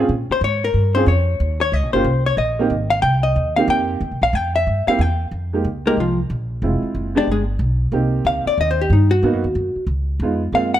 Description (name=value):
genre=jazz, small-group swing and bop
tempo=184 BPM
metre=4/4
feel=swing 64% on 8ths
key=F minor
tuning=A4 = 440 Hz
part: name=warm upright piano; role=accompaniment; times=0.0-10.7 s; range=Ab3 to Ab4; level=-21 LUFS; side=right 3 dB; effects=none
part: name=upright bass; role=bass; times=0.0-10.8 s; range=F1 to Bb2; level=-20 LUFS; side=equal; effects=none
part: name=vintage hollow-body jazz guitar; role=melody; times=0.3-10.8 s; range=F3 to G5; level=-19 LUFS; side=left 2 dB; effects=none
room=light reverb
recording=close, detailed microphones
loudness=-16 LUFS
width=side -11 dB against mid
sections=0.0-5.3 A section; 5.3-10.8 B section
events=hollow-body jazz guitar solo 5.3-10.8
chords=0.1 Bbm7; 1.4 Eb7; 2.7 Abmaj7; 4.0 C7; 5.3 Fm11; 6.6 Dm7b5; 7.3 G; 7.9 Cm7; 9.2 Abm9; 9.9 Db9